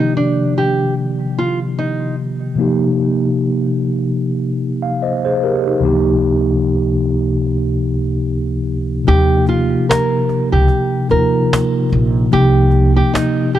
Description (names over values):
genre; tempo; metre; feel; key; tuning
lo-fi hip hop; 74 BPM; 4/4; swing 57% on 16ths; Eb mixolydian; A4 = 440 Hz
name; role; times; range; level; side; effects
nylon-string guitar; melody; 0.0-2.1, 9.1-13.6 s; D4 to Bb4; -18 LUFS; right 1 dB; low-pass filter
mellow tine electric piano; accompaniment; 0.0-13.6 s; Db2 to F5; -15 LUFS; equal; medium stereo tremolo, cassette tape, low-pass filter
upright bass; bass; 9.1-13.0 s; Bb1 to Eb2; -14 LUFS; equal; none
cajon; drums; 9.1-13.6 s; none; -22 LUFS; equal; none
room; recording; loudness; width
light reverb; dark, warm production; -13 LUFS; side -12 dB against mid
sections
0.0-9.1 A section; 9.1-13.6 B section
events
kick muted 9.1-13.6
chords
0.0 Cm7; 5.8 Dbmaj9; 9.1 Eb69; 12.3 Cm7